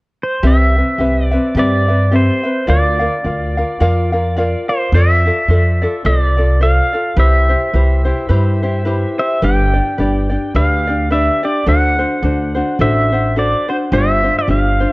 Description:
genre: Hawaiian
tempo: 107 BPM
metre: 4/4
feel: swing 57% on 8ths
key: C major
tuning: A4 = 440 Hz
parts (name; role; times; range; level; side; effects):
- pedal steel guitar; melody; 0.2-14.9 s; C5 to G5; -18 LUFS; equal; none
- ukulele; accompaniment; 0.4-14.9 s; C4 to F5; -18 LUFS; left 1 dB; none
- upright bass; bass; 0.4-14.8 s; G1 to G2; -14 LUFS; equal; transformer saturation
room: light reverb, small room ambience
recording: worn, warbling old tape, cassette tape, warbly pitch drift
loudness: -12 LUFS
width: side -22 dB against mid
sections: 0.4-14.9 A section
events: none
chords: 0.4 Cmaj7; 2.7 Bb/D; 4.9 F6; 7.2 Cmaj7; 9.4 G; 11.7 D7; 13.9 G7sus4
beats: | 0.43 0.99 1.55 2.12 | 2.68 3.24 3.80 4.37 | 4.93 5.49 6.05 6.61 | 7.18 7.74 8.30 8.86 | 9.43 9.99 10.55 11.11 | 11.67 12.24 12.80 13.36 | 13.92 14.48

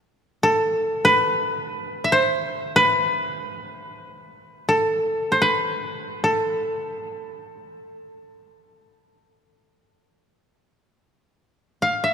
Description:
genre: japanese traditional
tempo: free time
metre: none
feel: none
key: A hirajoshi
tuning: A4 = 444 Hz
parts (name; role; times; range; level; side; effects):
- koto; melody; 0.4-12.1 s; A4 to F5; -19 LUFS; equal; none
room: moderate cathedral reverb, RT60 4.2 s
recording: minimal, uncompressed stereo recording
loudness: -19 LUFS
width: side -7 dB against mid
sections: 0.0-12.1 A section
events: none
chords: none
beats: free time

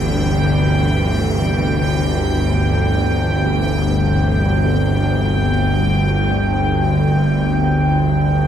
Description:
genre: dark ambient drone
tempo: free time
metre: none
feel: none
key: unclear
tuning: A4 = 441 Hz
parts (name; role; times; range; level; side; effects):
- dark symphonic cello section; sustained chords; 0.0-8.5 s; C3 to G4; -26 LUFS; equal; none
- bowed-like drone; drone; 0.0-8.5 s; G1 to D2; -15 LUFS; equal; built-in reverb
- bubbling stepped-filter texture; texture; 0.0-8.5 s; G5; -23 LUFS; right 1 dB; chorus, built-in reverb
room: wet huge ambient reverb, RT60 7.2 s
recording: none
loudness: -14 LUFS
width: side -9 dB against mid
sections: 0.0-8.5 A section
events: fade-out on cello section 0.0-8.5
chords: 0.0 Cadd9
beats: free time

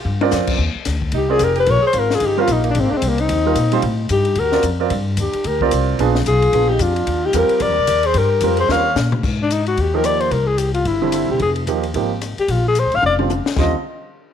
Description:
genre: jazz, small-group swing and bop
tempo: 222 BPM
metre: 4/4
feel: swing 60% on 8ths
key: Eb major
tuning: A4 = 444 Hz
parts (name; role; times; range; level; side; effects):
- upright bass; bass; 0.0-13.7 s; E1 to Bb2; -20 LUFS; left 1 dB; none
- warm baby grand piano; accompaniment; 0.2-13.7 s; D3 to D5; -21 LUFS; right 11 dB; none
- compact cocktail drum kit; drums; 0.2-13.6 s; crash cymbal, hi-hat, kick drum, ride cymbal, rim click, snare drum, toms; -26 LUFS; left 5 dB; none
- breathy tenor saxophone; second line; 1.1-9.0 s; G3 to Db5; -26 LUFS; right 10 dB; none
- breathy alto saxophone; melody; 1.2-13.7 s; Bb3 to F5; -18 LUFS; left 4 dB; slapback echo
room: light reverb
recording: 1960s-style stereo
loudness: -15 LUFS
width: side -9 dB against mid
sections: 0.6-9.2 A section; 9.2-13.6 B section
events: drum fill 0.1, 8.7-9.2, 13.0-13.6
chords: 0.0 Eb69 (rootless); 0.6 Ebsus2; 1.7 Ab69; 2.2 Eb69/G; 2.7 Abmaj9; 3.8 Gsus2; 4.4 D7alt; 4.9 Gm7; 6.0 Bb7b9; 7.1 Eb69; 8.7 Eb13; 9.2 Ab5; 10.3 C; 11.4 Fm7; 12.5 Bb; 13.6 Eb69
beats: 0.05 0.32 | 0.59 0.86 1.13 1.40 | 1.67 1.94 2.21 2.48 | 2.75 3.02 3.29 3.56 | 3.83 4.10 4.37 4.64 | 4.91 5.18 5.45 5.72 | 5.99 6.26 6.53 6.80 | 7.07 7.34 7.61 7.88 | 8.15 8.42 8.69 8.96 | 9.23 9.50 9.77 10.04 | 10.31 10.58 10.86 11.13 | 11.40 11.67 11.94 12.21 | 12.48 12.76 13.03 13.30 | 13.57

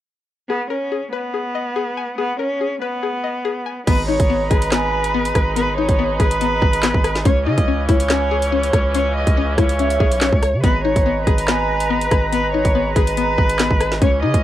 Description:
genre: hip hop, drill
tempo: 142 BPM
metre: 4/4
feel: half-time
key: G# minor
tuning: A4 = 441 Hz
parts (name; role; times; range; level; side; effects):
- clear cello; melody; 0.5-14.4 s; B3 to D#5; -21 LUFS; equal; low-pass filter, cassette tape, analog delay
- string-like resonator pluck; accompaniment; 0.5-14.4 s; B3 to G#5; -24 LUFS; left 9 dB; chorus, low-pass filter, cassette tape
- clear woodwind section; sustained chords; 3.9-14.4 s; C#3 to A#5; -25 LUFS; right 2 dB; cassette tape
- long sustained 808-style bass; bass; 3.9-14.4 s; G1 to C#3; -22 LUFS; right 1 dB; none
- drill drum kit; drums; 3.9-14.4 s; crash cymbal, handclaps, hi-hat, kick drum, rim click, snare drum; -18 LUFS; right 1 dB; cassette tape
- mellow hollow concert flute; second line; 4.7-13.6 s; E5 to A#5; -29 LUFS; right 13 dB; cassette tape, analog delay
room: little or no reverb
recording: home recording on cassette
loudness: -16 LUFS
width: side -12 dB against mid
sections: 0.5-3.9 A section; 3.9-14.4 B section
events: none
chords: 0.5 G#madd9; 7.3 C#madd9; 10.6 G#madd9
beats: | 0.49 0.92 1.34 1.76 | 2.19 2.61 3.03 3.45 | 3.88 4.30 4.72 5.14 | 5.57 5.99 6.41 6.83 | 7.25 7.68 8.10 8.52 | 8.95 9.37 9.79 10.21 | 10.63 11.06 11.48 11.90 | 12.33 12.75 13.17 13.59 | 14.02

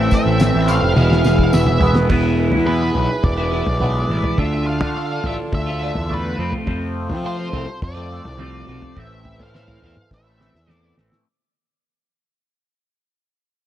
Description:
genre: psychedelic rock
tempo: 105 BPM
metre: 4/4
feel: straight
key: E phrygian dominant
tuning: A4 = 439 Hz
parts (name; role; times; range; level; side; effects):
- octave-fuzz lead guitar; melody; 0.0-10.9 s; B4 to F5; -27 LUFS; left 1 dB; distortion, tape echo
- pedal harmonium; sustained chords; 0.0-11.2 s; E3 to A5; -25 LUFS; right 4 dB; none
- twelve-string electric guitar; riff; 0.0-11.2 s; E2 to F4; -22 LUFS; left 1 dB; phaser, double-tracked left and right
- fuzz picked electric bass; bass; 0.0-11.1 s; E1 to F3; -21 LUFS; equal; overdrive
- cloth-damped thuddy drum kit; drums; 0.1-11.2 s; crash cymbal, hi-hat, kick drum, snare drum, toms; -21 LUFS; equal; none
- tambourine; percussion; 0.1-1.9 s; none; -38 LUFS; left 6 dB; none
room: small room reverb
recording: dry, close 1970s-style studio recording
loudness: -16 LUFS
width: side -11 dB against mid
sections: 0.0-2.1 A section; 2.1-11.3 B section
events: drum fill 1.0-2.1, 10.1-11.3; fade-out 2.1-11.3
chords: 0.0 Am; 1.0 E; 4.4 Dm; 6.4 F; 9.0 Am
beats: 0.40 0.96 1.53 | 2.10 2.67 3.24 3.81 | 4.38 4.96 5.53 6.10 | 6.67 7.24 7.82 8.39 | 8.96 9.54 10.11 10.68

